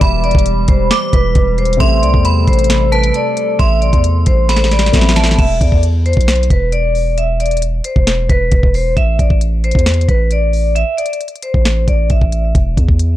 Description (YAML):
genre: hip hop, trap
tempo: 134 BPM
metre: 4/4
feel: half-time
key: E minor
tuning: A4 = 440 Hz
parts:
  - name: vibraphone with medium hard mallets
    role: melody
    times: 0.0-12.5 s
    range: B4 to E5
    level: -18 LUFS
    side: left 1 dB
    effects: low-pass filter, ping-pong delay
  - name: metallic FM bell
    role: second line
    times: 0.0-5.4 s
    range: A5 to D6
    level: -21 LUFS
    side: right 3 dB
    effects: chorus, phaser, ping-pong delay
  - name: dark grand piano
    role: accompaniment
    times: 0.0-5.4 s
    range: B2 to E4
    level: -22 LUFS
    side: left 4 dB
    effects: low-pass filter
  - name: warbly tape-like pad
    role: sustained chords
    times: 0.0-5.3 s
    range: C3 to A4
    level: -23 LUFS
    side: right 2 dB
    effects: chorus, built-in reverb
  - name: long sustained 808-style bass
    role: bass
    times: 0.0-13.2 s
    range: E1 to E2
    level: -14 LUFS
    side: equal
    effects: none
  - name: trap drum kit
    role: drums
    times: 0.0-13.1 s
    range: crash cymbal, hi-hat, kick drum, snare drum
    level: -14 LUFS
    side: equal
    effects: vintage 12-bit sampler grit
room: little or no reverb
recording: dark, warm production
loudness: -11 LUFS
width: side -14 dB against mid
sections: 0.0-5.4 A section; 5.4-13.2 B section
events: drum fill 4.5-5.4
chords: 0.0 Em; 1.8 Amadd9; 5.4 E5; 9.0 Am; 12.5 E5